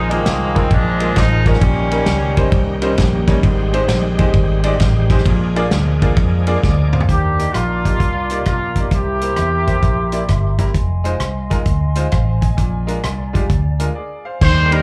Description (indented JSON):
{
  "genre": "uptempo gospel",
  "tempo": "131 BPM",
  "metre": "4/4",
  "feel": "swing 66% on 8ths",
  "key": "Eb major",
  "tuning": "A4 = 441 Hz",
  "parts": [
    { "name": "clear horn section", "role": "melody", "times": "0.0-2.8, 7.1-10.6, 14.4-14.8 s", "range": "Eb3 to C5", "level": "-22 LUFS", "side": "equal", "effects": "plate reverb" },
    { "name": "bright concert grand piano", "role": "accompaniment", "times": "0.0-14.8 s", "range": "Ab2 to Ab5", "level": "-26 LUFS", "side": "equal", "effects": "plate reverb, slapback echo" },
    { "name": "bright tonewheel organ", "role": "sustained chords", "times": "0.0-7.1, 14.4-14.8 s", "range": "Eb3 to D5", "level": "-27 LUFS", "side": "equal", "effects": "slow rotary speaker, overdrive, chorus vibrato, plate reverb" },
    { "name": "vintage muted fingered electric bass", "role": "bass", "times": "0.0-14.8 s", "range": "F1 to F2", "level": "-20 LUFS", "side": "equal", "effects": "none" },
    { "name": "warm soul drum kit", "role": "drums", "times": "0.1-14.8 s", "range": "crash cymbal, hi-hat, kick drum, ride cymbal, rim click, snare drum, toms", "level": "-21 LUFS", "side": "equal", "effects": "none" },
    { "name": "clean electric guitar", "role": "second line", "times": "2.8-3.7 s", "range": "G3 to G4", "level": "-30 LUFS", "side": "equal", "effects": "none" },
    { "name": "mellow hollow small flute group", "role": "sustained chords", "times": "7.1-14.4 s", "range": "D5 to D6", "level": "-34 LUFS", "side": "equal", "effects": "plate reverb" }
  ],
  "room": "light reverb",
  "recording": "live gig heard through the venue's PA, club reverb",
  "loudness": "-16 LUFS",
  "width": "mono",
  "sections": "0.0-7.1 A section; 7.1-14.4 B section",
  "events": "tonewheel organ fill 6.4-7.1; drum fill 6.6-7.1; break 14.0-14.4",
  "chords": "0.0 Bb7sus4; 1.6 Eb7/Bb; 3.4 Abmaj7; 5.3 Bb7; 7.1 Ebmaj7; 8.9 C7; 10.7 Fm7; 12.6 Bb7"
}